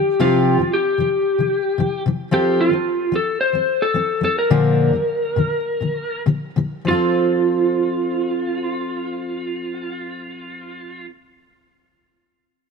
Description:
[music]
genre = acoustic pop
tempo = 96-113 BPM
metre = 4/4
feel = straight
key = F major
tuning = A4 = 441 Hz
[part]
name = electric slide guitar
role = melody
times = 0.0-11.1 s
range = F4 to C5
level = -20 LUFS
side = equal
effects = none
[part]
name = fingerpicked steel-string acoustic guitar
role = accompaniment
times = 0.0-11.1 s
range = Bb2 to Bb4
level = -20 LUFS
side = left 2 dB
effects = none
[sound]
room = light reverb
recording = none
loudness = -17 LUFS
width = side -5 dB against mid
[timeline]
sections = 0.0-6.9 A section; 6.9-11.9 B section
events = slowing down 2.3-6.9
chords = 0.2 Csus4; 2.3 F; 4.5 Bb; 6.9 F

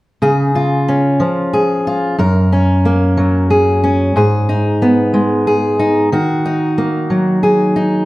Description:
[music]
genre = folk, solo fingerstyle acoustic guitar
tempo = 61 BPM (dotted quarters)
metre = 6/8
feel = straight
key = unclear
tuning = A4 = 442 Hz
[part]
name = fingerpicked steel-string acoustic guitar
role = solo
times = 0.2-8.1 s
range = F#2 to A#4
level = -12 LUFS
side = equal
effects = none
[sound]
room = wet recital hall reverb, RT60 1.6 s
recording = none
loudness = -12 LUFS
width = side -18 dB against mid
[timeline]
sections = 0.2-8.1 A section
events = none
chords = 0.2 C#; 2.2 F#; 4.2 G#m; 6.1 D#m

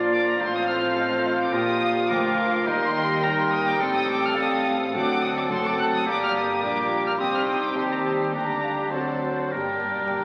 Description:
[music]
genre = quick classical-period movement for symphony orchestra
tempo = 106 BPM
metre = 4/4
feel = rubato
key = G minor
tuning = A4 = 442 Hz
[part]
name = bright clarinet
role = second line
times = 0.0-10.2 s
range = Bb3 to F4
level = -33 LUFS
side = equal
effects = none
[part]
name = mellow hollow silver concert flute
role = second line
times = 0.0-10.2 s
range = C5 to C6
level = -34 LUFS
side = equal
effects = none
[part]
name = warm chamber violin section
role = second line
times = 0.0-10.2 s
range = F4 to G5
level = -33 LUFS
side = equal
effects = none
[part]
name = warm oboe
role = second line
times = 0.0-10.2 s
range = G4 to D5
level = -30 LUFS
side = equal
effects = none
[part]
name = dark chamber viola section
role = accompaniment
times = 0.0-10.2 s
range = G3 to Bb4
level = -35 LUFS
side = equal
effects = none
[part]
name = mellow bassoon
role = accompaniment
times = 0.0-10.2 s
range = F3 to G3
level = -35 LUFS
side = equal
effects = none
[part]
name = mellow French horn section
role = sustained chords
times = 0.0-10.2 s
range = Bb3 to G4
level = -32 LUFS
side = equal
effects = none
[part]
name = dark chamber cello section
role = bass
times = 0.0-10.2 s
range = D2 to Eb3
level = -38 LUFS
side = equal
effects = none
[part]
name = warm studio double bass section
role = bass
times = 0.0-10.2 s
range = F#1 to Eb2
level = -42 LUFS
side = equal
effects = none
[part]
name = dark chamber violin section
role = melody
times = 0.1-10.2 s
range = G5 to F#6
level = -32 LUFS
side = equal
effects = none
[part]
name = timpani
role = percussion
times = 9.5-10.2 s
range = G2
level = -46 LUFS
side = equal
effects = none
[sound]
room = wet scoring stage reverb, RT60 2.0 s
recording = very old 78 rpm record, vinyl crackle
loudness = -24 LUFS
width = mono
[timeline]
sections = 0.0-10.2 A section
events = timpani fill 9.5-10.2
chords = 0.4 F/A; 1.5 Bb; 2.7 Eb; 3.8 Am7b5; 4.9 D7; 6.1 Gm; 7.2 Cm; 8.3 Gm/D; 8.9 D7; 9.5 Gm

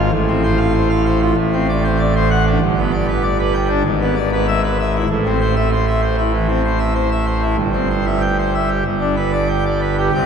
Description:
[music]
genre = classical, organ toccata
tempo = 97 BPM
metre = 4/4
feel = straight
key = unclear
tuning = A4 = 440 Hz
[part]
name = pipe organ, full organ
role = solo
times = 0.0-10.3 s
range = G1 to G5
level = -15 LUFS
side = equal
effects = none
[sound]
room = wet church reverb, RT60 3.2 s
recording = minimal, uncompressed stereo recording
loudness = -15 LUFS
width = side -7 dB against mid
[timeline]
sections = 0.0-10.1 A section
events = none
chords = 0.1 F/A; 1.4 D7/A; 2.6 G; 3.9 E7/G#; 5.1 Am; 7.6 C/G; 8.9 G

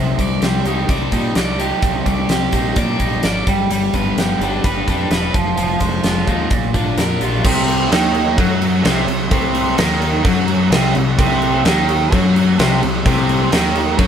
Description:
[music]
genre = classic rock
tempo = 128 BPM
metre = 4/4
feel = straight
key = C minor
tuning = A4 = 440 Hz
[part]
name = biting overdriven guitar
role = riff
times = 0.0-14.1 s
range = Bb2 to D5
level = -21 LUFS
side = right 8 dB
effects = none
[part]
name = overdriven semi-hollow guitar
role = riff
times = 0.0-14.1 s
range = Bb2 to D5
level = -19 LUFS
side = left 6 dB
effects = none
[part]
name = growling picked electric bass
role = bass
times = 0.0-14.1 s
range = E1 to Bb2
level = -22 LUFS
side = equal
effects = overdrive
[part]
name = huge arena drum kit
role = drums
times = 0.2-14.1 s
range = crash cymbal, hi-hat, kick drum, snare drum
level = -18 LUFS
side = equal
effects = none
[part]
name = cowbell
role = percussion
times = 7.4-14.1 s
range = none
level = -32 LUFS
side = right 5 dB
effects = none
[sound]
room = moderate stone room reverb, RT60 1.0 s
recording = band playing live in one room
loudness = -14 LUFS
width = side -8 dB against mid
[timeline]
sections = 0.0-7.4 A section; 7.4-14.1 B section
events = none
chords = 0.0 Cmadd9; 3.5 G; 5.3 Fm7; 6.5 Bb; 7.4 Cm

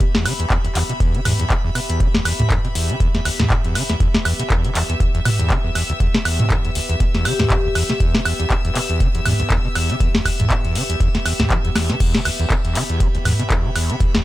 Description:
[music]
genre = acid house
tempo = 120 BPM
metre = 4/4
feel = swing 57% on 16ths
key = E minor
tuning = A4 = 440 Hz
[part]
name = overdriven acid bass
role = riff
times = 0.0-14.2 s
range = D2 to E3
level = -22 LUFS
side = equal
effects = distortion, analog chorus, cassette tape, sidechain pumping, ping-pong delay
[part]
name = booming analog drum machine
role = drums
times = 0.0-14.2 s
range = crash cymbal, handclaps, hi-hat, snare drum, toms, woodblock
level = -20 LUFS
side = equal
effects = small room ambience
[part]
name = electronic kick drum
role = drums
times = 0.0-14.1 s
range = none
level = -20 LUFS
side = equal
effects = overdrive, small room ambience
[part]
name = rich chamber string section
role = texture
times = 0.0-14.2 s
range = B3 to E6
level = -27 LUFS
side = left 1 dB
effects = sidechain pumping
[part]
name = vibraphone with hard mallets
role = melody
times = 7.3-8.0 s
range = G4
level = -28 LUFS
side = left 4 dB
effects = dub echo
[sound]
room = little or no reverb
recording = none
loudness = -16 LUFS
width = side -16 dB against mid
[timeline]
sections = 0.0-14.2 A section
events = none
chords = 0.0 Em

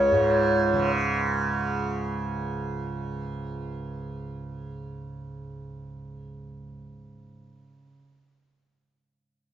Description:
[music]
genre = indian classical, Hindustani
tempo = free time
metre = none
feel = none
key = unclear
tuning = A4 = 441 Hz
[part]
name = bansuri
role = melody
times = 0.0-0.9 s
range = C#5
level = -22 LUFS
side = left 2 dB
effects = none
[part]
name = tanpura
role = drone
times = 0.0-7.9 s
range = C#2 to C#3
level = -28 LUFS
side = right 3 dB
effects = none
[sound]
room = moderate studio reverb, RT60 0.6 s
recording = dark, warm production, nothing above 7.6 kHz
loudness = -25 LUFS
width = side -10 dB against mid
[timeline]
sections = 0.0-1.1 A section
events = none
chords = none

